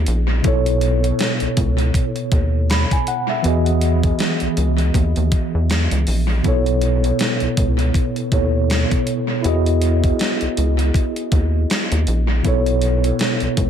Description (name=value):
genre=contemporary R&B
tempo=80 BPM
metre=4/4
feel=swing 58% on 16ths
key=E major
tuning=A4 = 440 Hz
part: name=mellow tine electric piano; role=accompaniment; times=0.0-13.7 s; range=B2 to B5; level=-20 LUFS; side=equal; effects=medium stereo tremolo, analog delay
part: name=rubbery square bass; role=bass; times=0.0-13.7 s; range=A#1 to E2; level=-18 LUFS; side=equal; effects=none
part: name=gated 80s digital drum machine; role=drums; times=0.1-13.7 s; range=hi-hat, kick drum, snare drum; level=-21 LUFS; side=equal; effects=gated reverb, gated reverb snare, analog delay
room=little or no reverb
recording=echo-heavy mix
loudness=-16 LUFS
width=side -8 dB against mid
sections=0.0-13.7 A section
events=none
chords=0.4 B9sus4; 3.4 Emaj7; 6.4 B9sus4; 9.4 Emaj7; 12.4 B9sus4